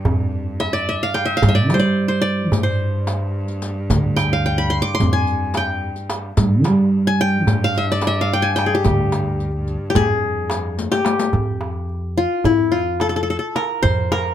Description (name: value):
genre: Turkish makam ensemble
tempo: 218 BPM (eighths)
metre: 9/8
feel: straight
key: G makam hicaz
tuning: A4 = 440 Hz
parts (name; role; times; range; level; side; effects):
- qanun; melody; 0.0-14.3 s; E4 to D6; -20 LUFS; left 2 dB; none
- rich cello; drone; 0.0-11.4 s; G2; -27 LUFS; right 1 dB; none
- upright bass; bass; 0.1-14.3 s; D2 to G3; -20 LUFS; right 1 dB; none
- darbuka; percussion; 0.1-14.2 s; none; -23 LUFS; right 2 dB; none
- riq; percussion; 1.4-11.3 s; none; -26 LUFS; left 6 dB; none
room: light reverb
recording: close, detailed microphones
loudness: -17 LUFS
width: side -10 dB against mid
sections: 0.0-11.3 A section; 11.3-14.3 B section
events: drum fill 10.8-11.3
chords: none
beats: 0.05 0.33 0.60 0.88 1.15 | 1.43 1.70 1.98 2.25 2.52 2.80 3.07 3.35 3.62 | 3.90 4.17 4.45 4.72 5.00 5.27 5.55 5.82 6.10 | 6.37 6.65 6.92 7.20 7.48 7.75 8.03 8.30 8.58 | 8.86 9.13 9.41 9.69 9.96 10.24 10.52 10.79 11.07 | 11.35 11.62 11.90 12.18 12.45 12.73 13.01 13.29 13.56 | 13.84 14.12